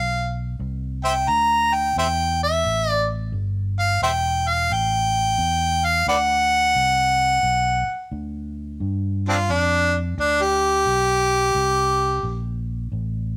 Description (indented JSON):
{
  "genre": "electric blues shuffle",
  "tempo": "88 BPM",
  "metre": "4/4",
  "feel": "swing 65% on 8ths",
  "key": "unclear",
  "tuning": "A4 = 438 Hz",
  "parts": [
    { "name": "bright harmonica", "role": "melody", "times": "0.0-12.4 s", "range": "C4 to Bb5", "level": "-21 LUFS", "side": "equal", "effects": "overdrive" },
    { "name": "fingered electric bass", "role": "bass", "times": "0.0-13.4 s", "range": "E1 to G2", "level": "-28 LUFS", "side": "equal", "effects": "none" }
  ],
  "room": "light reverb",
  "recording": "band playing live in one room",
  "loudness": "-21 LUFS",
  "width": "mono",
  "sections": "0.0-8.8 A section; 8.8-13.4 B section",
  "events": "harmonica solo 8.8-13.4",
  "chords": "0.0 N.C.; 0.6 C69; 3.3 Gsus2; 6.1 D6; 8.8 G7; 11.5 C5"
}